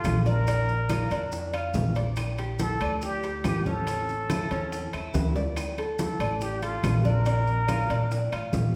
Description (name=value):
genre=latin, Cuban son and guajira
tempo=142 BPM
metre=4/4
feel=straight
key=D minor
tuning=A4 = 437 Hz
part: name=trumpet with plunger mute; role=melody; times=0.0-8.3 s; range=F4 to Bb4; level=-33 LUFS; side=equal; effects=none
part: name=Cuban tres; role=arpeggios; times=0.0-8.7 s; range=C#4 to D5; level=-36 LUFS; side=equal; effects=none
part: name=upright bass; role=bass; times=0.0-8.8 s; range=A1 to Bb2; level=-30 LUFS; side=equal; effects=none
part: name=congas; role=percussion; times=0.0-8.7 s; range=none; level=-36 LUFS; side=equal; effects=none
part: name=maracas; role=percussion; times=0.0-8.7 s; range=none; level=-49 LUFS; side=equal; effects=none
part: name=timbales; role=percussion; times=0.0-8.7 s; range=none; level=-40 LUFS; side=equal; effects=none
part: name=bongos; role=percussion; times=0.1-8.7 s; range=none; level=-38 LUFS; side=equal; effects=none
part: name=claves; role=percussion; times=0.1-8.5 s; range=none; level=-47 LUFS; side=equal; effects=none
room=wet recital hall reverb, RT60 1.4 s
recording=recorded in a church or concert hall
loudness=-27 LUFS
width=mono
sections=0.0-5.6 A section; 5.6-8.8 A section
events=drum fill 5.1-5.6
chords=0.5 Bb; 2.2 Gm/Bb; 3.9 A; 5.6 Dm; 7.3 Bbmaj7